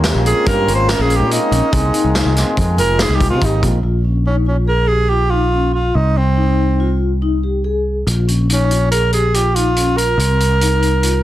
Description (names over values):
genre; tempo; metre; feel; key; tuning
progressive instrumental, band music in an uneven meter; 142 BPM; 5/4; straight; Bb dorian; A4 = 444 Hz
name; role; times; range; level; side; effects
mellow flugelhorn; second line; 0.0-3.6 s; Ab3 to Bb3; -23 LUFS; equal; plate reverb
percussive tonewheel organ; accompaniment; 0.0-3.8 s; Ab3 to F4; -24 LUFS; right 1 dB; slow rotary speaker, plate reverb
vibraphone with soft mallets; arpeggios; 0.0-11.2 s; C4 to Ab4; -22 LUFS; left 6 dB; none
picked electric bass; bass; 0.0-11.2 s; F1 to C3; -16 LUFS; equal; none
vintage drum kit; drums; 0.0-3.7, 8.1-11.1 s; hi-hat, kick drum, snare drum; -20 LUFS; equal; none
warm tenor saxophone; melody; 0.3-11.2 s; C4 to C5; -18 LUFS; right 2 dB; plate reverb
room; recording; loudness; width
light reverb; dense, heavily limited modern master; -13 LUFS; side -14 dB against mid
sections
0.0-3.8 A section; 3.8-11.2 B section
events
tenor saxophone solo 0.0-3.8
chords
0.0 Bbm7; 1.7 Abadd9/C; 3.8 Bbm; 6.0 Ab/C; 8.1 Bbm; 10.2 F7(no3)